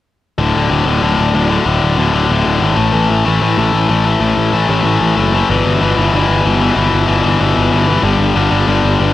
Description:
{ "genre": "punk", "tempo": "188 BPM", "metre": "4/4", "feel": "straight", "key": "unclear", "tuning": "A4 = 440 Hz", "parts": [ { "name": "tight distorted guitar", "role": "riff", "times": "0.4-9.1 s", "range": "D2 to A3", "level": "-13 LUFS", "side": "left 4 dB", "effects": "distortion" }, { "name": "fuzz picked electric bass", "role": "bass", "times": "0.4-9.1 s", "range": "D1 to A1", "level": "-15 LUFS", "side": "right 2 dB", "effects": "overdrive" } ], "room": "light reverb", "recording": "none", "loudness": "-11 LUFS", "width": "side -13 dB against mid", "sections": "0.4-9.1 A section", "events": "none", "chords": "0.4 D5; 2.8 A5; 5.5 Em/G; 8.0 G5", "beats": "| 0.39 0.71 1.02 1.34 | 1.66 1.98 2.30 2.62 | 2.94 3.26 3.58 3.89 | 4.21 4.53 4.85 5.17 | 5.49 5.81 6.13 6.45 | 6.76 7.08 7.40 7.72 | 8.04 8.36 8.67 8.99" }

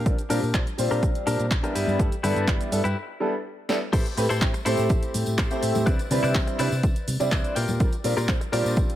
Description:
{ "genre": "filtered disco house", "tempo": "124 BPM", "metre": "4/4", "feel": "straight", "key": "unclear", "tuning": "A4 = 440 Hz", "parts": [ { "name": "direct-recorded clean electric guitar", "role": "riff", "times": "0.0-8.9 s", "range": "D4 to G5", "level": "-31 LUFS", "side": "left 3 dB", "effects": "spring reverb, sidechain pumping, low-pass filter" }, { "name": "hollow-body short-scale fingered electric bass", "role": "bass", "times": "0.0-8.9 s", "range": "G1 to C3", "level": "-28 LUFS", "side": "equal", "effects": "tube saturation, sidechain pumping, low-pass filter" }, { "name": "bright concert grand piano", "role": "accompaniment", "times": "0.1-9.0 s", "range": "G3 to C5", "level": "-27 LUFS", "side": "equal", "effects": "phaser, sidechain pumping, low-pass filter" }, { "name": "electronic kick drum", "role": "drums", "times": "0.1-8.9 s", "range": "none", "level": "-24 LUFS", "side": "equal", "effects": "overdrive" }, { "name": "punchy analog drum machine", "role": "drums", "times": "0.1-9.0 s", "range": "crash cymbal, handclaps, hi-hat, shaker, snare drum", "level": "-32 LUFS", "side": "equal", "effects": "overdrive, sidechain pumping on hats, sidechain pumping on perc, sidechain pumping on cymbals" }, { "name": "tambourine and congas", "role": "percussion", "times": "0.1-9.0 s", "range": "none", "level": "-38 LUFS", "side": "left 3 dB", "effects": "sidechain pumping on perc, low-pass filter on perc" } ], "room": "little or no reverb", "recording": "none", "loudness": "-22 LUFS", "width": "side -12 dB against mid", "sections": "0.0-3.9 A section; 3.9-9.0 B section", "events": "break 3.0-3.9; drum fill 3.7; drop 3.9-9.0; clean electric guitar fill 7.1-7.8", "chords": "0.0 Bb6; 1.8 G6; 3.9 Am7; 5.9 Cmaj9; 7.6 Bb6", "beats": "| 0.06 0.55 1.03 1.51 | 2.00 2.48 2.96 3.45 | 3.93 4.42 4.90 5.38 | 5.87 6.35 6.83 7.32 | 7.80 8.29 8.77" }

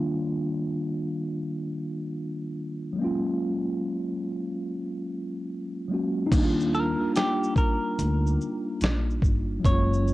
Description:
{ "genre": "lo-fi hip hop", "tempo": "72 BPM", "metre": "4/4", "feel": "swing 66% on 16ths", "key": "Eb major", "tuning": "A4 = 439 Hz", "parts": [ { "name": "mellow tine electric piano", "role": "accompaniment", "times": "0.0-10.1 s", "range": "Eb3 to Gb4", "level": "-27 LUFS", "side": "equal", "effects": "medium stereo tremolo, cassette tape" }, { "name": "upright bass", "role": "bass", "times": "6.3-10.1 s", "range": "Gb1 to Eb2", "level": "-26 LUFS", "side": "equal", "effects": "none" }, { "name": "dusty soul sampler-style drum kit", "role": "drums", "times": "6.3-10.1 s", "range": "crash cymbal, hi-hat, kick drum, shaker, snare drum", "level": "-25 LUFS", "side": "equal", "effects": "none" }, { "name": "semi-hollow electric guitar", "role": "melody", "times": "6.7-10.1 s", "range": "G4 to Db5", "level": "-30 LUFS", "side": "equal", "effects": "harmonic tremolo, analog delay" } ], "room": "light reverb, digital ambience", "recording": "worn, warbling old tape, cassette tape, warbly pitch drift", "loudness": "-25 LUFS", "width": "side -17 dB against mid", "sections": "0.0-6.3 A section; 6.3-10.1 B section", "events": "none", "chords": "0.0 Ebmaj9; 3.0 Gbmaj9; 6.3 Ebmaj9", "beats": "0.48 1.32 2.15 | 2.98 3.82 4.65 5.48 | 6.32 7.15 7.98 8.82 | 9.65" }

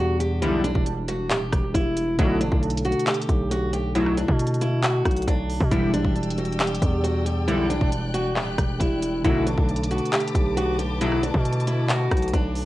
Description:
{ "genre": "hip hop, trap", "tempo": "136 BPM", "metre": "4/4", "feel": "half-time", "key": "E minor", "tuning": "A4 = 444 Hz", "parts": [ { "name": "picked steel-string acoustic guitar", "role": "melody", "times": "0.0-12.7 s", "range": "D4 to G4", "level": "-26 LUFS", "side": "equal", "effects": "low-pass filter" }, { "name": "mellow tine electric piano", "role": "accompaniment", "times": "0.0-12.7 s", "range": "B2 to A4", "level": "-30 LUFS", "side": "right 1 dB", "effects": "low-pass filter, cassette tape" }, { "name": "distorted 808-style bass", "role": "bass", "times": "0.0-12.7 s", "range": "D1 to B2", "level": "-26 LUFS", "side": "equal", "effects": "distortion" }, { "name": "trap drum kit", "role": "drums", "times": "0.2-12.7 s", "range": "handclaps, hi-hat, kick drum, rim click", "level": "-25 LUFS", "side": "equal", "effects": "none" }, { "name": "chorused polysynth", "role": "stabs", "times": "0.4-11.2 s", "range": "D2 to G3", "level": "-29 LUFS", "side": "left 1 dB", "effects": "cassette tape, tape echo" }, { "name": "warm studio string section", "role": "sustained chords", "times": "5.7-12.7 s", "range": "B4 to F#6", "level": "-35 LUFS", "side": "left 4 dB", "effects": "cassette tape" } ], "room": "digital ambience", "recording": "home recording on cassette", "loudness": "-20 LUFS", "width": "side -16 dB against mid", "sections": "0.0-12.7 A section", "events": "none", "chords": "0.0 Em7; 2.2 Bm7; 5.7 Em7; 9.2 Bm7", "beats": "| 0.42 0.86 1.30 1.75 | 2.19 2.63 3.07 3.51 | 3.95 4.39 4.83 5.28 | 5.72 6.16 6.60 7.04 | 7.48 7.92 8.36 8.80 | 9.25 9.69 10.13 10.57 | 11.01 11.45 11.89 12.33" }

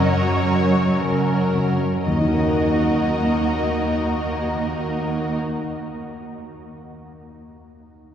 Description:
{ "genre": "cinematic, emotional film score for orchestra", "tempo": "58 BPM", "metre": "3/4", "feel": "rubato", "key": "Eb minor", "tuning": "A4 = 440 Hz", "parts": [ { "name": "rich studio violin section", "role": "melody", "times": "0.0-5.4 s", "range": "Bb4 to Eb5", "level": "-27 LUFS", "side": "left 2 dB", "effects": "none" }, { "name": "rich studio violin section", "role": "second line", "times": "0.0-5.4 s", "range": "Gb4 to Bb4", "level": "-29 LUFS", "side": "left 1 dB", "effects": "none" }, { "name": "felt-muted upright piano", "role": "accompaniment", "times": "0.0-8.1 s", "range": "Eb2 to Gb5", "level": "-26 LUFS", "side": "equal", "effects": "none" }, { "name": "warm studio viola section", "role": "accompaniment", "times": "0.0-5.4 s", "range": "Gb3 to Eb4", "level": "-25 LUFS", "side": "right 1 dB", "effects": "none" }, { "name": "concert harp", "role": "arpeggios", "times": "0.0-6.0 s", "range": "Gb2 to Gb5", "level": "-28 LUFS", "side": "left 2 dB", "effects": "none" }, { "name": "rich studio cello section", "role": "bass", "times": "0.0-5.4 s", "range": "Eb2 to Gb2", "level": "-26 LUFS", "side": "right 2 dB", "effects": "none" } ], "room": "wet cathedral reverb, RT60 6.3 s", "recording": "heard from further back in the room", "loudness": "-18 LUFS", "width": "side -9 dB against mid", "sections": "0.0-2.1 A section; 2.1-5.2 B section", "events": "slowing down 0.0-2.1", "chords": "0.0 Gb; 2.1 Ebm", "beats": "0.00 1.00 | 2.06 3.09 4.14" }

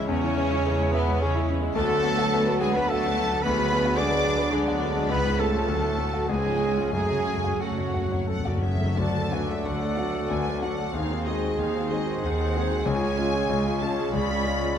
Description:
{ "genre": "classical, romantic movement for piano and orchestra", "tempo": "86-113 BPM", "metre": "3/4", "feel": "rubato", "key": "unclear", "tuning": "A4 = 440 Hz", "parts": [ { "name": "rich symphonic violin section", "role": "melody", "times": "0.0-14.8 s", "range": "B4 to D6", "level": "-34 LUFS", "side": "left 2 dB", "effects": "none" }, { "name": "warm concert grand piano", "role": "melody", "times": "0.0-14.8 s", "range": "C#2 to F#5", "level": "-29 LUFS", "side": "left 4 dB", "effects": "none" }, { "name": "dark cor anglais", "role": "second line", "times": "0.0-14.8 s", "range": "B3 to D5", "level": "-34 LUFS", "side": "right 3 dB", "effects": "none" }, { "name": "rich symphonic violin section", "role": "second line", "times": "0.0-14.8 s", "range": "B3 to B5", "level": "-36 LUFS", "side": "left 2 dB", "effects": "none" }, { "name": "warm clarinet", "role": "second line", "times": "0.0-14.8 s", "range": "B3 to D5", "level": "-36 LUFS", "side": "left 2 dB", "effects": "none" }, { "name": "rich symphonic viola section", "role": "accompaniment", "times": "0.0-14.8 s", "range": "D3 to A4", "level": "-35 LUFS", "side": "right 2 dB", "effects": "none" }, { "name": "dark trombone section", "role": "sustained chords", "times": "0.0-14.8 s", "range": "A2 to G#3", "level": "-35 LUFS", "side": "right 5 dB", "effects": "none" }, { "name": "warm French horn section", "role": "sustained chords", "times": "0.0-14.8 s", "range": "G#3 to G#4", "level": "-35 LUFS", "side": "left 3 dB", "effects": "none" }, { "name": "mellow trumpet", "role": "stabs", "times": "0.0-14.7 s", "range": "B3 to D5", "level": "-32 LUFS", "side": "right 2 dB", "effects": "none" }, { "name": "clear symphonic cello section", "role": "bass", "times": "0.0-14.7 s", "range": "C#2 to D4", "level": "-32 LUFS", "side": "right 2 dB", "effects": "none" }, { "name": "rich symphonic double bass section", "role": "bass", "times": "0.0-14.7 s", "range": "C#2 to F#2", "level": "-32 LUFS", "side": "right 3 dB", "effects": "none" }, { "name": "timpani", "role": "percussion", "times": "6.9-8.9, 12.9-13.8 s", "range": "F#2 to C#3", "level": "-30 LUFS", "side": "left 1 dB", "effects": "none" }, { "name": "mellow hollow silver concert flute", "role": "second line", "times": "8.3-14.8 s", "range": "F#4 to D5", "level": "-35 LUFS", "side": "left 1 dB", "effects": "none" } ], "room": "moderate scoring stage reverb, RT60 1.9 s", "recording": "none", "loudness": "-22 LUFS", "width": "side -8 dB against mid", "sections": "0.0-9.0 A section; 9.0-14.8 B section", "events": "timpani fill 6.9-9.0", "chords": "0.1 C#m/E; 1.8 Bm/D; 3.4 G#m7b5/D; 5.1 C#; 5.7 D; 6.3 C#7; 6.9 F#m; 9.0 D; 10.9 G#7/D#; 12.9 C#", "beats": "| 0.08 0.65 1.22 | 1.76 2.33 2.90 | 3.44 3.98 4.54 | 5.12 5.69 6.30 | 6.94 7.62 8.30 | 8.99 9.66 10.31 | 10.95 11.59 12.23 | 12.86 13.50 14.14 | 14.78" }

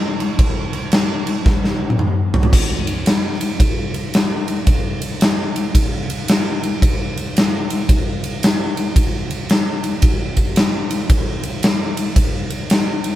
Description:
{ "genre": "rock", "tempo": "112 BPM", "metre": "4/4", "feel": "swing 64% on 8ths", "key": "none", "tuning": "none", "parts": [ { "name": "huge arena drum kit", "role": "drums", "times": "0.2-13.1 s", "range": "crash cymbal, kick drum, ride cymbal, snare drum, toms", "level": "-15 LUFS", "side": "equal", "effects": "none" } ], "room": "light reverb", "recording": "band playing live in one room", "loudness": "-15 LUFS", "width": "side -13 dB against mid", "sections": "0.0-2.5 A section; 2.5-13.2 B section", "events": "drum fill 1.5-2.5", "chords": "none", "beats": "| 0.39 0.93 1.46 2.00 | 2.54 3.07 3.61 4.14 | 4.68 5.22 5.75 6.29 | 6.83 7.36 7.90 8.43 | 8.97 9.50 10.04 10.57 | 11.11 11.64 12.17 12.70" }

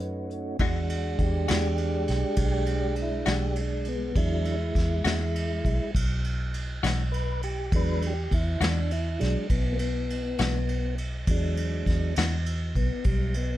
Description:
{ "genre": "slow blues", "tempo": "67 BPM (dotted quarters)", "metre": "12/8", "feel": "straight", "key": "E mixolydian", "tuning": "A4 = 440 Hz", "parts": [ { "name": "tonewheel organ", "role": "sustained chords", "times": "0.0-13.6 s", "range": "F#3 to B4", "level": "-30 LUFS", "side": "equal", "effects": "slow rotary speaker, overdrive" }, { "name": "vintage muted fingered electric bass", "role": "bass", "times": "0.0-13.6 s", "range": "B1 to F#2", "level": "-28 LUFS", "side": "equal", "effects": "none" }, { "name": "vintage brush drum kit", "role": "drums", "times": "0.0-13.5 s", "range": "hi-hat, kick drum, ride cymbal, snare drum", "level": "-30 LUFS", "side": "equal", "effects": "none" }, { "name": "clean electric guitar", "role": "accompaniment", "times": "0.6-12.4 s", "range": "E3 to F#4", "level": "-29 LUFS", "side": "left 6 dB", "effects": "tremolo" } ], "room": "little or no reverb", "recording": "dark, warm production", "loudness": "-24 LUFS", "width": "side -14 dB against mid", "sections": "0.6-13.6 A section", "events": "tonewheel organ solo 0.6-13.6", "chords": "0.0 B9; 0.6 E9", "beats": "| 0.61 1.50 2.39 3.28 | 4.17 5.06 5.95 6.83 | 7.72 8.61 9.50 10.39 | 11.28 12.17 13.06" }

